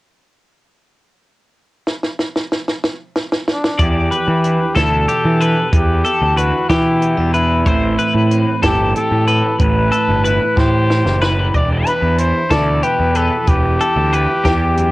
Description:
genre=math rock and midwest emo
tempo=62 BPM (dotted quarters)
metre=6/8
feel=straight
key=E minor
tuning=A4 = 440 Hz
part: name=compact cocktail drum kit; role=drums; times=1.9-14.9 s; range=hi-hat, kick drum, snare drum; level=-19 LUFS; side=equal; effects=cassette tape
part: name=breathy trumpet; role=melody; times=3.5-14.9 s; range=D4 to D5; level=-19 LUFS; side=left 1 dB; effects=cassette tape
part: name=twelve-string electric guitar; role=accompaniment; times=3.8-14.9 s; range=E2 to G4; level=-23 LUFS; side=right 5 dB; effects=spring reverb, cassette tape
part: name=twelve-string electric guitar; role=arpeggios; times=3.8-14.9 s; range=G4 to B5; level=-19 LUFS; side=left 3 dB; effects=spring reverb, cassette tape
part: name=fuzz picked electric bass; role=bass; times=3.8-14.9 s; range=E1 to E3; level=-17 LUFS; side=equal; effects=overdrive
room=little or no reverb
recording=home recording on cassette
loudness=-13 LUFS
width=side -19 dB against mid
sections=1.9-3.8 A section; 3.8-14.9 B section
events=drum fill 1.9-3.8, 10.6-11.5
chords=1.9 N.C.; 3.8 Em7; 7.7 Am9; 11.5 Em7

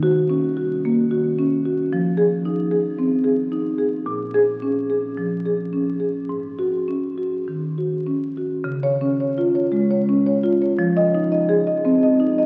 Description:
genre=classical, contemporary piece for solo marimba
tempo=99-115 BPM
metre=4/4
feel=rubato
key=Db major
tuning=A4 = 440 Hz
part: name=marimba with soft mallets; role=solo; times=0.0-12.5 s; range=Ab2 to Eb5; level=-21 LUFS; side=equal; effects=none
room=wet cathedral reverb, RT60 7.0 s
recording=very old 78 rpm record, vinyl crackle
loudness=-21 LUFS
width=mono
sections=0.0-8.6 A section; 8.6-12.5 B section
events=none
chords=0.0 Ebm7; 1.9 Fm7; 4.1 Bbm7; 6.3 Ab7sus4; 8.6 Db; 10.8 Fm7

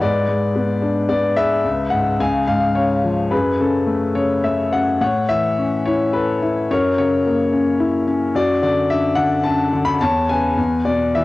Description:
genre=classical, lyrical solo piano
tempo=108 BPM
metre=3/4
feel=rubato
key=F# minor, A major from 5.0 s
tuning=A4 = 440 Hz
part: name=warm concert grand piano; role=solo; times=0.0-11.2 s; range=C#2 to B5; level=-16 LUFS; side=left 2 dB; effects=none
room=light reverb, small room ambience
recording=home recording on cassette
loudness=-16 LUFS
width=side -18 dB against mid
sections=0.0-5.0 A section; 5.0-11.2 B section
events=none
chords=0.0 G#dim; 1.6 C#7sus4; 2.2 C#; 3.3 F#madd9; 5.0 A; 6.7 F#7; 8.3 Dadd9/F#; 10.0 A/E; 10.6 E

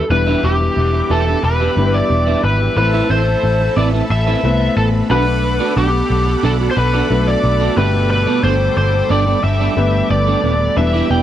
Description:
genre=pop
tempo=90 BPM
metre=4/4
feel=straight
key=G major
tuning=A4 = 438 Hz
part: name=lead guitar through a small cranked amp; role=melody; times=0.0-11.2 s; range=G4 to G5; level=-18 LUFS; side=left 1 dB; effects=overdrive
part: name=warm baby grand piano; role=accompaniment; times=0.0-11.2 s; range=B2 to B5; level=-22 LUFS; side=left 3 dB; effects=none
part: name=electric guitar at the edge of break-up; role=riff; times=0.0-11.2 s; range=B3 to E5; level=-23 LUFS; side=right 7 dB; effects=ensemble chorus
part: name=raw garage guitar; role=accompaniment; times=0.1-11.2 s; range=E2 to B3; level=-25 LUFS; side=right 5 dB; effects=overdrive, tube saturation, lush chorus
part: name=brassy analog pad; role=sustained chords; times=0.1-11.2 s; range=G4 to D6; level=-26 LUFS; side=left 4 dB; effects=chorus
part: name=vintage muted picked electric bass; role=bass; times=0.1-11.2 s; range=Eb1 to C2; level=-17 LUFS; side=equal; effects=none
room=little or no reverb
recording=dry, close 1970s-style studio recording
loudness=-13 LUFS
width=side -11 dB against mid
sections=0.1-11.2 A section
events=none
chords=0.1 Em7; 2.8 Amadd9; 5.1 Bm7; 7.8 Gadd9

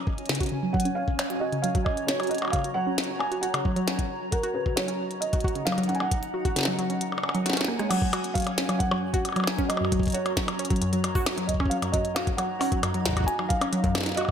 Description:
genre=IDM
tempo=134 BPM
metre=4/4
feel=straight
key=F# major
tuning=A4 = 440 Hz
part: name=granular cloud pad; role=sustained chords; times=0.0-14.3 s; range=C#4 to A#5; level=-34 LUFS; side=equal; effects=built-in reverb, sidechain pumping
part: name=electronic kick drum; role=drums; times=0.1-14.3 s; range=none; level=-27 LUFS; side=equal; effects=none
part: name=glitchy drum kit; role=drums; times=0.2-14.3 s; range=crash cymbal, hi-hat, percussion blips, rim click, snare drum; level=-29 LUFS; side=left 1 dB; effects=none
part: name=warbly dusty pluck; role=arpeggios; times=0.3-14.3 s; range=F#2 to F#4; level=-29 LUFS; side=equal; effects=chorus, tape echo
part: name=felt-muted upright piano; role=melody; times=0.7-14.3 s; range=A#4 to G#5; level=-32 LUFS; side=right 2 dB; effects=ping-pong delay
room=moderate echo chamber reverb, RT60 1.5 s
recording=none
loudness=-24 LUFS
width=side -8 dB against mid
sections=0.0-7.9 A section; 7.9-14.3 B section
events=filter sweep on synth pluck 0.0-7.9; kick drops out 7.0-7.9; drum fill 7.7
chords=0.0 C#sus4; 0.7 F#; 4.3 D#m; 6.1 C#sus4; 7.9 F#; 11.5 D#m; 13.3 C#sus4

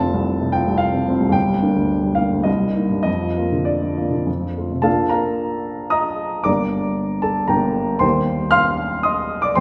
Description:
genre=classical, romantic character piece for solo piano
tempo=97-118 BPM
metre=3/4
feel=rubato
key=Bb major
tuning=A4 = 440 Hz
part: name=warm upright piano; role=solo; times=0.0-9.6 s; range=F1 to F6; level=-20 LUFS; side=equal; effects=none
room=wet recital hall reverb, RT60 1.5 s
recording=heard from further back in the room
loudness=-20 LUFS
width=mono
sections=0.0-4.9 A section; 4.9-9.6 B section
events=none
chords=0.0 F; 1.4 Gm; 2.5 Cm7; 3.1 Bb/F; 4.3 F; 4.9 Bb; 6.5 Gm; 8.0 Cm7/Eb

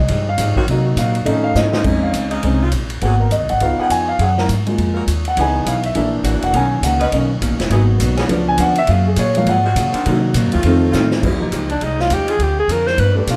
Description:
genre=jazz, big band swing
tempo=205 BPM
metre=4/4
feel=swing 60% on 8ths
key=Bb minor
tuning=A4 = 440 Hz
part: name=warm grand piano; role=accompaniment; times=0.0-13.4 s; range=D#3 to Ab5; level=-20 LUFS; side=equal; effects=none
part: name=upright bass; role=bass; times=0.0-13.4 s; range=D#1 to Db3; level=-21 LUFS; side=equal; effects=none
part: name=archtop guitar, miked and amplified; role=accompaniment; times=0.1-1.8, 6.5-13.4 s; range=F2 to A4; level=-28 LUFS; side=equal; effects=none
part: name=swinging big-band drum kit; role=drums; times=0.1-13.4 s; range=crash cymbal, hi-hat, kick drum, ride cymbal, snare drum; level=-27 LUFS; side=equal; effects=none
part: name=warm saxophone section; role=sustained chords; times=0.6-12.4 s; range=C#3 to B4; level=-28 LUFS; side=equal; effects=none
part: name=breathy alto saxophone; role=melody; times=11.7-13.4 s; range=D4 to C5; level=-20 LUFS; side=equal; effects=none
room=moderate large studio reverb, RT60 1.4 s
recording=none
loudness=-17 LUFS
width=mono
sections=0.0-1.9 A section; 1.9-11.2 A section; 11.2-13.4 A section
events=grand piano solo 0.0-11.2; drum fill 1.6, 10.9; alto saxophone solo 11.2-13.4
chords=0.0 Fm9; 0.7 Cm7b5; 1.3 F7alt; 1.9 Bbm11; 3.0 Abm9; 3.6 Db7; 4.2 Gbmaj9; 5.4 Dbm7; 6.0 Gb7alt; 6.5 Bmaj9; 7.7 Abm7; 8.3 Db7b9; 8.9 Gbmaj9; 10.1 Cm7b5; 10.6 F7; 11.2 Fm9; 12.4 Dm7b5

